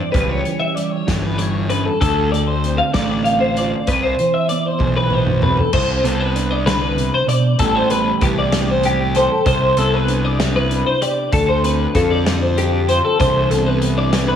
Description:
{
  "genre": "math rock and midwest emo",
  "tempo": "64 BPM (dotted quarters)",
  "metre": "6/8",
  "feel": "straight",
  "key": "C major",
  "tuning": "A4 = 441 Hz",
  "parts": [
    { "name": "mellow electric guitar", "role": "accompaniment", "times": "0.0-14.4 s", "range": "A2 to A4", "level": "-22 LUFS", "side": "right 4 dB", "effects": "analog chorus" },
    { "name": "twelve-string electric guitar", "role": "arpeggios", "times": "0.0-14.4 s", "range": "G4 to F5", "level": "-18 LUFS", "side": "left 2 dB", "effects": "ensemble chorus" },
    { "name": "fuzz picked electric bass", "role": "bass", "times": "0.1-14.4 s", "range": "G1 to F2", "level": "-20 LUFS", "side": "left 1 dB", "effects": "overdrive" },
    { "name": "loose indie drum kit", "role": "drums", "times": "0.1-14.3 s", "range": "crash cymbal, hi-hat, kick drum, snare drum, toms", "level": "-23 LUFS", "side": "equal", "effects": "none" }
  ],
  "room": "wet plate reverb, RT60 2.2 s",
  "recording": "dreamy mix soaked in reverb, small room ambience",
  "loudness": "-15 LUFS",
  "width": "side -9 dB against mid",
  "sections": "0.0-5.7 A section; 5.7-14.4 B section",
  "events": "drum fill 4.8-5.7",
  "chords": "0.1 A7/C# (rootless); 2.0 Dm7; 3.9 Cmaj7; 5.7 Csus2; 7.6 Am9; 9.5 Cmaj9; 11.3 Dm7; 13.2 Cmaj9"
}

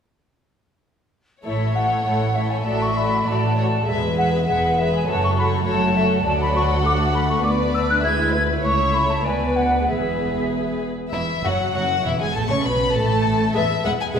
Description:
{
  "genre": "quick classical-period movement for symphony orchestra",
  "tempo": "99 BPM",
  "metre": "2/4",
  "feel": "straight",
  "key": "A major",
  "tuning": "A4 = 440 Hz",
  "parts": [
    { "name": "mellow silver concert flute", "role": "second line", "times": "1.4-10.8 s", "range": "E5 to G#6", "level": "-22 LUFS", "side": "equal", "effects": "none" },
    { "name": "warm chamber violin section", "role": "second line", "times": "1.4-14.2 s", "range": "E4 to F#5", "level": "-27 LUFS", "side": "left 2 dB", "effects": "none" },
    { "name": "dark studio viola section", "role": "accompaniment", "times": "1.4-14.2 s", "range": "E3 to B4", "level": "-26 LUFS", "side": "right 1 dB", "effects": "none" },
    { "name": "dark chamber cello section", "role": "bass", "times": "1.4-14.2 s", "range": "C#2 to C#3", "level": "-25 LUFS", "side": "right 1 dB", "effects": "none" },
    { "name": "rich chamber double bass section", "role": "bass", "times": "1.4-14.2 s", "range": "E1 to D2", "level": "-26 LUFS", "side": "right 2 dB", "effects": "none" },
    { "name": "warm chamber violin section", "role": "melody", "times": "1.5-14.2 s", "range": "G#4 to C#6", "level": "-27 LUFS", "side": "left 6 dB", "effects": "none" }
  ],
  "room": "wet concert hall reverb, RT60 1.7 s",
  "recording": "recorded in a church or concert hall",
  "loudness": "-18 LUFS",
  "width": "side -7 dB against mid",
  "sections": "1.4-11.1 A section; 11.1-14.2 A section",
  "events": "none",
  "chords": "1.4 A; 2.7 D/A; 3.9 E; 5.1 F#m; 6.3 D; 7.4 E7/D; 8.7 A/C#; 9.3 Bm/D; 9.9 E; 11.1 Eadd9; 12.4 Aadd9; 13.6 E"
}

